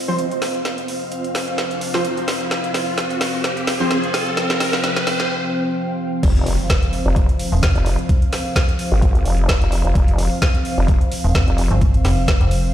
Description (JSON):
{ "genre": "bass house", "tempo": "129 BPM", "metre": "4/4", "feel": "swing 55% on 16ths", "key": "unclear", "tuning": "A4 = 440 Hz", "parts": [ { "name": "dark analog pad", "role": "sustained chords", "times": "0.0-12.7 s", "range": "F3 to G5", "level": "-26 LUFS", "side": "equal", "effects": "chorus, sidechain pumping" }, { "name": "riser and impact", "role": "sound effects", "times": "0.4-8.1 s", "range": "none", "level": "-27 LUFS", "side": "equal", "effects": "none" }, { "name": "ethereal airy pad", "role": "texture", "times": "0.0-5.3 s", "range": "C4 to F5", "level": "-26 LUFS", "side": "right 1 dB", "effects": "ensemble chorus, built-in reverb, sidechain pumping" }, { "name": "orchestra-hit-like synth stab", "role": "stabs", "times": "0.1-3.9 s", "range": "F3 to C5", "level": "-23 LUFS", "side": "right 1 dB", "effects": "built-in reverb, sidechain pumping, tape echo" }, { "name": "garage drum kit", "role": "drums", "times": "0.2-12.6 s", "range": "crash cymbal, hi-hat, snare drum", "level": "-24 LUFS", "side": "equal", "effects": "overdrive, small room ambience" }, { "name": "vowel-sweep wobble bass", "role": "bass", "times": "6.2-11.7 s", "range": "F1 to Ab1", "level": "-17 LUFS", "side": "equal", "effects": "chorus, tube saturation, sidechain pumping" }, { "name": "electronic kick drum", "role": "drums", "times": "6.2-12.4 s", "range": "none", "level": "-17 LUFS", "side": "equal", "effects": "overdrive, small room ambience" }, { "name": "metallic FM bass", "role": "bass", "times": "7.5-7.7, 11.2-12.7 s", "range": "Eb1 to G1", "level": "-17 LUFS", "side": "equal", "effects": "overdrive, sidechain pumping" } ], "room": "light reverb", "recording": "played on a big sound system in a bare room, stone room reverb", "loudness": "-16 LUFS", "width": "side -11 dB against mid", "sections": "0.0-6.2 A section; 6.2-12.7 B section", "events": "build-up 0.0-6.2; drum fill 0.0-5.3; filter sweep on synth stab 0.0-6.2; riser 0.4-5.3; break 5.3-6.2; drop 6.2-12.7; impact 6.2-8.1", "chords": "0.0 F5" }